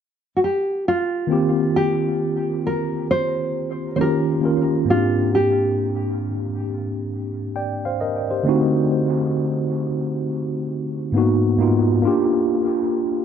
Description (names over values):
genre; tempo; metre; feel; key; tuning
hip hop; 67 BPM; 4/4; swing 65% on 16ths; Eb major; A4 = 440 Hz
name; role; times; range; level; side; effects
nylon-string guitar; melody; 0.4-6.6 s; F4 to C5; -22 LUFS; right 1 dB; low-pass filter, dub echo
mellow tine electric piano; accompaniment; 1.3-13.2 s; Ab2 to G5; -19 LUFS; equal; medium stereo tremolo, low-pass filter, dub echo
room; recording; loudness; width
light reverb, small room reverb; echo-heavy mix; -18 LUFS; side -8 dB against mid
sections
0.0-1.3 A section; 1.3-13.2 B section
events
none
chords
0.0 N.C.; 1.3 Eb69; 4.0 Eb9; 4.9 Abmaj9#11; 8.5 D7b9; 11.1 Abm7; 12.0 Gm7